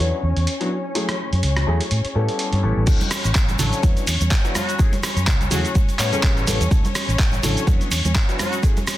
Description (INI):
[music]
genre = filtered disco house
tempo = 125 BPM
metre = 4/4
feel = swing 56% on 16ths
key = unclear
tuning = A4 = 437 Hz
[part]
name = clear concert grand piano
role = accompaniment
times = 0.0-8.8 s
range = F#3 to C#5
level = -27 LUFS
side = left 2 dB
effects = phaser, sidechain pumping, low-pass filter
[part]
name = rich studio string section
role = sustained chords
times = 0.0-9.0 s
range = C#4 to C#5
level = -30 LUFS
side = left 3 dB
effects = sidechain pumping, low-pass filter
[part]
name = vintage muted fingered electric bass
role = bass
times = 0.0-8.1 s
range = A1 to A2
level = -21 LUFS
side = equal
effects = tube saturation, sidechain pumping, low-pass filter
[part]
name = dusty soul sampler-style drum kit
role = drums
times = 0.4-9.0 s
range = cabasa, crash cymbal, handclaps, hi-hat, rim click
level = -24 LUFS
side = right 1 dB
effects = sidechain pumping on hats, sidechain pumping on cymbals, sidechain pumping on perc
[part]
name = electronic kick drum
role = drums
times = 2.9-8.7 s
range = none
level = -18 LUFS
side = equal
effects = none
[part]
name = tube shaker and congas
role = percussion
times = 2.9-9.0 s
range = none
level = -29 LUFS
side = right 4 dB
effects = sidechain pumping on perc, low-pass filter on perc
[part]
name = clear horn section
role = melody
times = 4.6-8.6 s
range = C#3 to F#4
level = -28 LUFS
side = left 2 dB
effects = vintage 12-bit sampler grit, sidechain pumping, low-pass filter, dub echo
[sound]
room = small room reverb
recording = dense, heavily limited modern master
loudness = -17 LUFS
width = side -14 dB against mid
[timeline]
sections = 0.0-2.9 A section; 2.9-9.0 B section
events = drop 2.9-9.0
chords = 0.0 E5; 1.0 F#m7; 1.9 A7; 2.9 Dmaj9; 3.8 E5; 4.8 F#m7; 5.8 A7; 6.7 Dmaj9; 7.7 E5